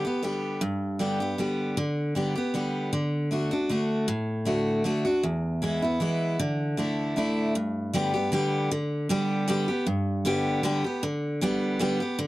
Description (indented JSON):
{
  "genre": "bluegrass",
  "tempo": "156 BPM",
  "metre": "3/4",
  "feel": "swing 53% on 8ths",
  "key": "unclear",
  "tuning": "A4 = 440 Hz",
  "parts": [
    { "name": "picked steel-string acoustic guitar", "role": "solo", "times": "0.0-12.3 s", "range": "E2 to G4", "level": "-25 LUFS", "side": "equal", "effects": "none" }
  ],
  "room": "light reverb",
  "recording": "dry, close 1970s-style studio recording",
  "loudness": "-25 LUFS",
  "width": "side -17 dB against mid",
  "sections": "0.0-7.5 A section; 7.5-12.3 A section",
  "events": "none",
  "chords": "0.0 G; 2.9 D; 5.2 E; 6.4 Dsus2; 7.5 G"
}